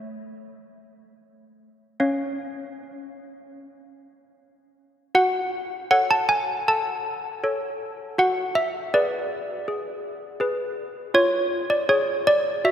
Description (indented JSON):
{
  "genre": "classical, tune for handbells",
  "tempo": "79 BPM",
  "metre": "4/4",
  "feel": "straight",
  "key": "F# minor",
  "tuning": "A4 = 440 Hz",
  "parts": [
    { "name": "malleted handbells", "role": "solo", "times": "0.0-12.7 s", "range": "A3 to A5", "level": "-21 LUFS", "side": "equal", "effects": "none" }
  ],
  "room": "wet cathedral reverb, RT60 4.7 s",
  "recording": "none",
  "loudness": "-21 LUFS",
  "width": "side -9 dB against mid",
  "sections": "0.0-5.1 A section; 5.1-12.7 B section",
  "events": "none",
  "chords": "0.0 A; 2.0 C#; 5.1 F#m; 8.2 G#m7b5/F#; 11.1 Fm6"
}